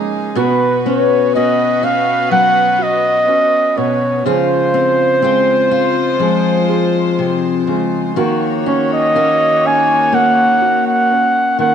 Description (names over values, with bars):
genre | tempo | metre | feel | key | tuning
acoustic folk-pop ballad | 62 BPM | 4/4 | straight | unclear | A4 = 440 Hz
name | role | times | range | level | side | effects
fingerpicked steel-string acoustic guitar | accompaniment | 0.0-11.7 s | B2 to Ab4 | -18 LUFS | left 9 dB | none
rich chamber string section | sustained chords | 0.0-11.7 s | Db3 to Db5 | -22 LUFS | right 1 dB | none
felt-muted upright piano | arpeggios | 0.0-11.7 s | F3 to Ab4 | -21 LUFS | right 11 dB | none
mellow flugelhorn | melody | 0.4-11.7 s | B4 to Ab5 | -13 LUFS | right 1 dB | none
room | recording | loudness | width
moderate plate reverb, RT60 2.6 s | 1960s-style stereo with parts hard left and right | -12 LUFS | side -8 dB against mid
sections
0.0-11.7 A section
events
none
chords
0.4 Bsus2; 4.2 Dbmaj7; 8.2 Ebm7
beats
| 0.36 1.33 2.30 3.28 | 4.25 5.22 6.20 7.18 | 8.17 9.15 10.12 11.10